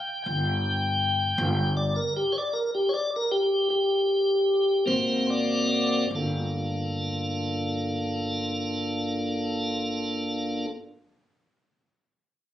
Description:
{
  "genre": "blues",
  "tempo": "48-54 BPM (dotted quarters)",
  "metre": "12/8",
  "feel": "straight",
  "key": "G minor",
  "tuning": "A4 = 442 Hz",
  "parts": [
    { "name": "tonewheel organ", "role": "sustained chords", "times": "0.0-10.7 s", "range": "Bb3 to G5", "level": "-24 LUFS", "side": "equal", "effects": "overdrive, slow rotary speaker" },
    { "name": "upright bass", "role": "bass", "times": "0.3-10.6 s", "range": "G1 to Ab1", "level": "-31 LUFS", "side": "equal", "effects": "none" }
  ],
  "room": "moderate club reverb, RT60 0.8 s",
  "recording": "recorded on a phone in the room, club reverb, compression, nothing above 10.3 kHz",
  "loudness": "-24 LUFS",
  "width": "side -11 dB against mid",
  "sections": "0.0-6.1 A section; 6.1-11.1 B section",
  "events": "slowing down 0.0-6.1; tonewheel organ solo 0.0-6.1",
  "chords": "0.0 N.C.; 1.4 Gm; 4.9 Ab7; 6.1 Gm9"
}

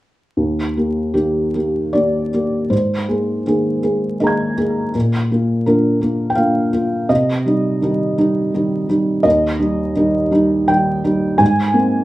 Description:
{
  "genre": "neoclassical minimalist piano",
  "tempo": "74-85 BPM",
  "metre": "3/4",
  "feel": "rubato",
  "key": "Eb major",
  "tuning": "A4 = 436 Hz",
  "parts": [
    { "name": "felt-muted upright piano", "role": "solo", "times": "0.4-12.0 s", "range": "Eb2 to Ab6", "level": "-15 LUFS", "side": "equal", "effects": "none" }
  ],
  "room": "wet small room reverb, RT60 0.5 s",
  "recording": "rough home demo mix, vinyl crackle",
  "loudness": "-15 LUFS",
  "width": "side -16 dB against mid",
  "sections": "0.4-12.0 A section",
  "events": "none",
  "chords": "0.4 Eb; 2.7 Abadd9; 4.9 Bb; 7.1 Cm; 9.2 Eb; 11.4 Abadd9"
}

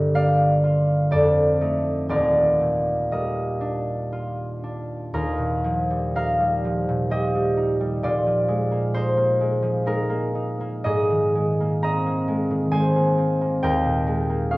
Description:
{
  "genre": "classical, solo harp piece",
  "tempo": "56-69 BPM",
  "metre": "3/4",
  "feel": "rubato",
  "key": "Eb major",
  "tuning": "A4 = 443 Hz",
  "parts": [
    { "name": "concert harp", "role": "solo", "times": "0.0-14.6 s", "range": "Eb1 to Bb5", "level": "-20 LUFS", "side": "equal", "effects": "none" }
  ],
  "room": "wet recital hall reverb, RT60 1.4 s",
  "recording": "worn, warbling old tape, cassette tape, warbly pitch drift",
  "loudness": "-20 LUFS",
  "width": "side -20 dB against mid",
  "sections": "0.0-5.1 A section; 5.1-14.6 B section",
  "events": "none",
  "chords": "0.0 Gm7; 1.1 F9; 2.1 Ebmaj9; 5.1 Ebadd9; 8.0 Bb9sus4; 10.8 Abadd9; 13.6 Ebsus4"
}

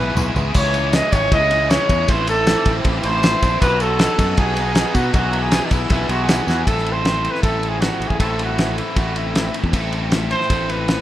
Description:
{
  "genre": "indie rock",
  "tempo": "157 BPM",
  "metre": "4/4",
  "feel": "straight",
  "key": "unclear",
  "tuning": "A4 = 442 Hz",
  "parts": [
    { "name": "warm trumpet", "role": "melody", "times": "0.0-11.0 s", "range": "D#4 to D#5", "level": "-21 LUFS", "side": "right 1 dB", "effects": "slapback echo" },
    { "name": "string machine, violins", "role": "sustained chords", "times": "0.0-6.7 s", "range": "E4 to E6", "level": "-31 LUFS", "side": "equal", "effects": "ensemble chorus" },
    { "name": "overdriven electric guitar", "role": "riff", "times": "0.0-11.0 s", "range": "A2 to G#4", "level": "-26 LUFS", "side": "left 8 dB", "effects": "none" },
    { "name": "raw garage guitar", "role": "riff", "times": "0.0-11.0 s", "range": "E3 to A4", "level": "-26 LUFS", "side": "right 7 dB", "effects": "overdrive, analog chorus, slapback echo" },
    { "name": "growling fingered electric bass", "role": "bass", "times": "0.0-11.0 s", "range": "G#1 to B2", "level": "-23 LUFS", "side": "equal", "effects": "overdrive" },
    { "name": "cloth-damped thuddy drum kit", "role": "drums", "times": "0.2-11.0 s", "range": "crash cymbal, kick drum, ride cymbal, snare drum, toms", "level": "-20 LUFS", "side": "equal", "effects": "none" },
    { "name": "tambourine", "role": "percussion", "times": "0.2-6.6 s", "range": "none", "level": "-36 LUFS", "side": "left 4 dB", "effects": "none" }
  ],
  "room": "light reverb, small room ambience",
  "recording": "rough home demo mix",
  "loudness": "-16 LUFS",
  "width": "side -13 dB against mid",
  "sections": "0.0-6.7 A section; 6.7-11.0 B section",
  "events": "drum fill 0.0-0.6, 6.5",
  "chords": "0.0 Eadd9/B; 0.6 C#madd9; 2.1 Am; 3.6 B; 5.1 Eadd9/B; 6.7 Am"
}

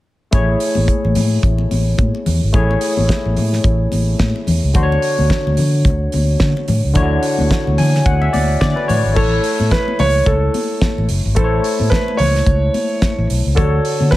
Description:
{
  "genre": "disco",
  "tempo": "109 BPM",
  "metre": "4/4",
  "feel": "swing 56% on 16ths",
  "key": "A major",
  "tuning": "A4 = 439 Hz",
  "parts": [
    { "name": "barky tine electric piano", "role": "accompaniment", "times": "0.3-14.2 s", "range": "D3 to G#5", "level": "-20 LUFS", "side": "left 1 dB", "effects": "overdrive, lush chorus" },
    { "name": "fingered electric bass", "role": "bass", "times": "0.3-14.1 s", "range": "F#1 to D3", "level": "-16 LUFS", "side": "equal", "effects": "none" },
    { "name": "damped 70s drum kit", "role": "drums", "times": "0.3-14.2 s", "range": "crash cymbal, hi-hat, kick drum, snare drum", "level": "-19 LUFS", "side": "equal", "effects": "none" },
    { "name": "congas", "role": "percussion", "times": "0.3-14.2 s", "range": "none", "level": "-25 LUFS", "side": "left 4 dB", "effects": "none" },
    { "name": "warm concert grand piano", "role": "melody", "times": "9.2-14.2 s", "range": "A4 to C#5", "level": "-19 LUFS", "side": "right 2 dB", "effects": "none" }
  ],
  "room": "light reverb, studio reverb",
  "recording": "none",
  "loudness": "-13 LUFS",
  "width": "side -16 dB against mid",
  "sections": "0.3-9.2 A section; 9.2-14.2 B section",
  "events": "tine electric piano fill 7.5-9.2",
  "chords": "0.3 Amaj7; 4.8 Dmaj7; 9.2 A; 13.6 Dmaj7"
}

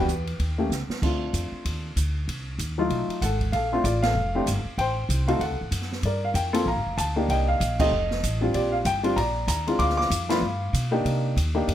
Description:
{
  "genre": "jazz piano trio",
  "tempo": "192 BPM",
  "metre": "4/4",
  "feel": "swing 61% on 8ths",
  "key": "G minor from 6.0 s",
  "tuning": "A4 = 440 Hz",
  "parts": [
    { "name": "warm upright piano", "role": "melody", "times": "0.0-11.7 s", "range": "Gb3 to D6", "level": "-25 LUFS", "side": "left 1 dB", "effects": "plate reverb" },
    { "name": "upright bass", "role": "bass", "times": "0.0-11.7 s", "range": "F1 to C3", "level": "-26 LUFS", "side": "equal", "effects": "none" },
    { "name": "open jazz drum kit", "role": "drums", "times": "0.1-11.7 s", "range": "crash cymbal, hi-hat, kick drum, ride cymbal, snare drum", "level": "-32 LUFS", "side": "right 2 dB", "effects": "none" }
  ],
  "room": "light reverb",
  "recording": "none",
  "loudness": "-22 LUFS",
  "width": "side -11 dB against mid",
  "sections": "0.0-6.0 A section; 6.0-11.7 B section",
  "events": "drum fill 0.7-1.0; band accent 4.0, 7.8, 10.3",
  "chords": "0.4 Eb7; 1.0 Dm7; 2.3 Cm; 2.9 B7#11; 3.5 Bbmaj7; 4.8 Am7; 5.4 D7; 6.0 Gm9; 7.3 Cm11; 7.9 F7; 8.5 Bb6; 9.8 Dm7b5; 10.4 G7; 11.0 Cm9"
}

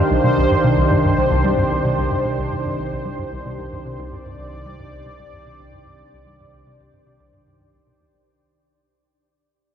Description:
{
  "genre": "ambient, sequencer-driven space music",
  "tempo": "112 BPM",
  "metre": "4/4",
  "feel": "straight",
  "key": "C minor",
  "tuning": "A4 = 440 Hz",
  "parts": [
    { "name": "lush unison pad", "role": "sustained chords", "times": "0.0-8.3 s", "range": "Eb3 to D5", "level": "-20 LUFS", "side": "right 1 dB", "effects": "chorus" },
    { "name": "tight sequencer bass", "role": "riff", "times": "0.0-8.3 s", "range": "C2 to G3", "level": "-22 LUFS", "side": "equal", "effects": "tape echo" },
    { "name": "analog drone", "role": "bass", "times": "0.3-8.2 s", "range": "C2", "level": "-29 LUFS", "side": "equal", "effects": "chorus" },
    { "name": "bubbling stepped-filter texture", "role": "texture", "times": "0.0-8.3 s", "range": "C5", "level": "-30 LUFS", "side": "left 1 dB", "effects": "chorus, built-in reverb" }
  ],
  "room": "wet huge ambient reverb, RT60 8.4 s",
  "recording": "dark, warm production",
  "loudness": "-16 LUFS",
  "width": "side -9 dB against mid",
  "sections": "0.0-8.3 A section",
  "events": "fade-out on analog synth bass 0.0-8.3; fade-out 0.0-8.3",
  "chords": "0.0 Cmadd9"
}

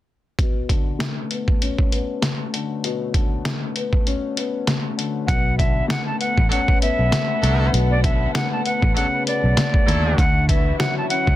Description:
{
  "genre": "hip hop, boom-bap hip-hop",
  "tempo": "98 BPM",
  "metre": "4/4",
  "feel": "swing 56% on 16ths",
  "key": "B minor",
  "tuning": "A4 = 439 Hz",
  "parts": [
    { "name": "dark grand piano", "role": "accompaniment", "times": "0.4-11.4 s", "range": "B2 to C#4", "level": "-26 LUFS", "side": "left 5 dB", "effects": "cassette tape, high-pass filter, low-pass filter" },
    { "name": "trip hop sampler-style drum kit", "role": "drums", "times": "0.4-11.4 s", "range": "hi-hat, kick drum, snare drum", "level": "-20 LUFS", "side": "equal", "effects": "none" },
    { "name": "breathy bright jazz flute", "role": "melody", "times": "5.3-11.4 s", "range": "D5 to A5", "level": "-23 LUFS", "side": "equal", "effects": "high-pass filter, low-pass filter, ping-pong delay" },
    { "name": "warm studio string section", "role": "sustained chords", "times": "5.3-11.4 s", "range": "D3 to F#5", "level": "-31 LUFS", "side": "equal", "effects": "high-pass filter, low-pass filter" },
    { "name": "vintage muted fingered electric bass", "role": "bass", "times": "5.3-11.4 s", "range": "A1 to D#2", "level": "-20 LUFS", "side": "right 1 dB", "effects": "none" },
    { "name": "brilliant trumpet section", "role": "stabs", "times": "6.5-10.3 s", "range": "F#3 to A4", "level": "-30 LUFS", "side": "right 1 dB", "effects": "high-pass filter, low-pass filter, ping-pong delay" }
  ],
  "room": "little or no reverb",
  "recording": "dense, heavily limited modern master",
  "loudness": "-18 LUFS",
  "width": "side -14 dB against mid",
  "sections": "0.4-5.3 A section; 5.3-11.4 B section",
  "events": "filter sweep on grand piano 0.4-5.3; kick muted 4.1-5.3",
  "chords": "0.4 Bm9; 10.2 Dmaj9"
}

